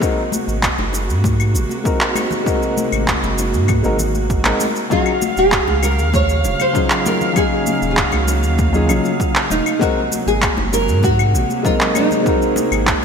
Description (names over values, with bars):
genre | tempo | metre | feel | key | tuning
sunset chillout | 98 BPM | 4/4 | straight | unclear | A4 = 440 Hz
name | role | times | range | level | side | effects
dark baby grand piano | accompaniment | 0.0-13.0 s | Gb3 to F5 | -21 LUFS | left 2 dB | auto-pan, digital delay
dark chamber string section | sustained chords | 0.0-13.0 s | C3 to F5 | -24 LUFS | right 3 dB | none
electronic kick drum | drums | 0.0-13.0 s | none | -22 LUFS | equal | overdrive
electronic shaker, handclaps and claves | drums | 0.0-13.0 s | none | -22 LUFS | equal | overdrive, gated reverb
congas and bongos | percussion | 0.3-13.0 s | none | -28 LUFS | left 6 dB | none
warm sub bass | bass | 0.5-13.0 s | Eb1 to Ab2 | -19 LUFS | equal | none
nylon-string guitar | melody | 4.9-13.0 s | Eb4 to Db5 | -19 LUFS | right 1 dB | wide subtle chorus, ping-pong delay
room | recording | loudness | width
moderate lush hall reverb, RT60 3.0 s | bright 1980s-style digital production | -14 LUFS | side -6 dB against mid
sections
0.0-13.0 A section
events
none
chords
0.0 Ab9; 4.9 Ebm11; 9.8 Ab9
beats
| 0.02 0.63 1.24 1.85 | 2.46 3.08 3.69 4.30 | 4.91 5.53 6.14 6.75 | 7.36 7.97 8.59 9.20 | 9.81 10.42 11.04 11.65 | 12.26 12.87